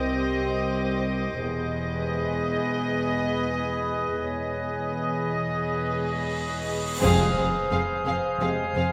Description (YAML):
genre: cinematic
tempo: 86 BPM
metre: 4/4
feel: straight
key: unclear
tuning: A4 = 441 Hz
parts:
  - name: rich studio violin section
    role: melody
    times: 0.0-8.9 s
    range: Eb5 to F5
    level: -35 LUFS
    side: equal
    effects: none
  - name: warm studio viola section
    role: accompaniment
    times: 0.0-8.8 s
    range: B3 to G#4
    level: -34 LUFS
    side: equal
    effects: none
  - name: drifting glass-harmonics texture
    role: sustained chords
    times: 0.0-8.9 s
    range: G4 to F5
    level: -32 LUFS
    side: equal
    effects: chorus, built-in reverb
  - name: dark chamber double bass section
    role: bass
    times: 0.0-8.8 s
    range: E1 to C2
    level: -36 LUFS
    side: equal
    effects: none
  - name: warm studio cello section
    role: bass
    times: 0.0-8.8 s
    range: C2 to F2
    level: -35 LUFS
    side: equal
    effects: none
  - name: vibraphone with soft mallets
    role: texture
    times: 0.0-8.9 s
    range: Bb4 to C#5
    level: -39 LUFS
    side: equal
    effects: none
  - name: cymbal swell and impact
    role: sound effects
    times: 6.1-8.9 s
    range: none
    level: -37 LUFS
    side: equal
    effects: none
  - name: warm chamber violin section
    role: second line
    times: 7.0-8.8 s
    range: Ab4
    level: -33 LUFS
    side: equal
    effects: none
  - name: mellow trombone section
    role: sustained chords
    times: 7.0-8.7 s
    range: C3 to Ab3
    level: -36 LUFS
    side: equal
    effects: none
  - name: warm French horn section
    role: sustained chords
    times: 7.0-8.7 s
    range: C4 to C5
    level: -39 LUFS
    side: equal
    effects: none
  - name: warm studio cello section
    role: riff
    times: 7.0-8.9 s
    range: F2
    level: -34 LUFS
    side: equal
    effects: none
room: wet scoring stage reverb, RT60 1.7 s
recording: none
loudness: -26 LUFS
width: mono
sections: 0.0-7.0 A section; 7.0-8.9 B section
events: cymbal swell 6.1-7.0; band accent 7.0-7.7; impact 7.0-8.9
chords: 0.0 Cm; 1.4 Emaj7; 7.0 Fm